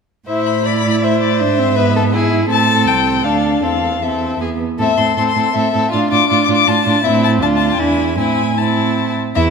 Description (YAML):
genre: quick classical-period movement for string quartet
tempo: 159 BPM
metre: 3/4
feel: rubato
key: A minor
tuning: A4 = 440 Hz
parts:
  - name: rich violin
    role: melody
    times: 0.3-9.4 s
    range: D5 to D6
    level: -18 LUFS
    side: left 8 dB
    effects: none
  - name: warm violin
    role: second line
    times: 0.3-9.5 s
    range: E4 to D5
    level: -19 LUFS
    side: left 3 dB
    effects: none
  - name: warm viola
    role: accompaniment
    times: 0.3-9.2 s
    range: B3 to E4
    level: -18 LUFS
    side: right 2 dB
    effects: none
  - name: warm cello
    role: bass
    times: 0.3-9.5 s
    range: C2 to A2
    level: -18 LUFS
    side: right 5 dB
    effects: none
room: wet recital hall reverb, RT60 1.6 s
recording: none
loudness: -13 LUFS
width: side -5 dB against mid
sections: 0.3-9.4 A section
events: none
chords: 0.3 Am; 1.4 E7/G#; 2.5 Am; 3.2 Dm; 3.6 Am/E; 4.4 E5; 4.8 Am; 5.9 Dm/A; 7.0 Am; 7.4 Dm; 7.8 E7; 8.2 Am